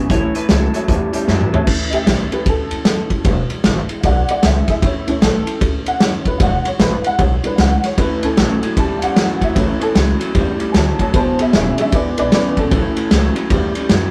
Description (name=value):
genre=rockabilly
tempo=152 BPM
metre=4/4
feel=swing 63% on 8ths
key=A major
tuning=A4 = 440 Hz
part: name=honky-tonk upright piano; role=accompaniment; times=0.0-13.7 s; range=E3 to A5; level=-23 LUFS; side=equal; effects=none
part: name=picked steel-string acoustic guitar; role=accompaniment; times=0.0-14.1 s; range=E2 to E4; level=-31 LUFS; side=equal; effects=none
part: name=electric guitar through a small old amp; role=riff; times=0.0-1.7, 8.0-14.1 s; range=E2 to G3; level=-23 LUFS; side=equal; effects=none
part: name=upright bass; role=bass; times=0.0-14.1 s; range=E1 to F#2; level=-23 LUFS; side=equal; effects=none
part: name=electric guitar through a small old amp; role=melody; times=0.1-1.2 s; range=A4 to C#5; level=-32 LUFS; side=equal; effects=none
part: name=vintage drum kit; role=drums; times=0.1-14.0 s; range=crash cymbal, hi-hat, kick drum, ride cymbal, snare drum, toms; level=-19 LUFS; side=equal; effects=none
room=moderate small room reverb, RT60 0.5 s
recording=rough rehearsal-room recording, warm saturation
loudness=-16 LUFS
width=mono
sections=0.0-1.7 A section; 1.7-14.1 B section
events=drum fill 1.3-1.7; honky-tonk piano solo 1.7-14.1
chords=0.1 A; 3.2 E7; 4.8 A; 6.4 E7; 8.0 A; 11.1 E7; 12.7 A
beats=| 0.10 0.49 0.89 1.28 | 1.67 2.07 2.46 2.85 | 3.25 3.64 4.04 4.43 | 4.83 5.22 5.61 6.01 | 6.40 6.80 7.19 7.58 | 7.98 8.37 8.77 9.16 | 9.56 9.95 10.35 10.74 | 11.13 11.53 11.92 12.32 | 12.71 13.11 13.50 13.90